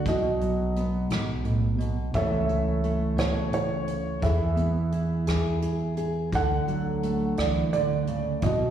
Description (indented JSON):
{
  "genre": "acoustic folk-pop ballad",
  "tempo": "57 BPM (dotted quarters)",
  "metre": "6/8",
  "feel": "straight",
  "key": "unclear",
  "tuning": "A4 = 441 Hz",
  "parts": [
    { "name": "felt-muted upright piano", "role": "melody", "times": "0.0-8.7 s", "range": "F#4 to F#5", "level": "-29 LUFS", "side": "right 2 dB", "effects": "slapback echo" },
    { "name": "fingerpicked steel-string acoustic guitar", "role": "accompaniment", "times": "0.0-8.7 s", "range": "G#2 to A4", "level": "-28 LUFS", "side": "equal", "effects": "slapback echo" },
    { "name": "upright bass", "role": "bass", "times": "0.1-8.7 s", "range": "B1 to E2", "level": "-28 LUFS", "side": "right 1 dB", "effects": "none" },
    { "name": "soft brush drum kit", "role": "drums", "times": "0.1-8.6 s", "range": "hi-hat, kick drum, rim click", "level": "-34 LUFS", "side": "right 1 dB", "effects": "none" }
  ],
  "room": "light reverb, studio ambience",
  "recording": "live gig heard through the venue's PA, recital hall reverb, small room ambience",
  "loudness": "-24 LUFS",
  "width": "side -9 dB against mid",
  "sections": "0.0-8.7 A section",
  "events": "none",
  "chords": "0.1 B; 2.1 A/C#; 4.2 E; 6.3 D"
}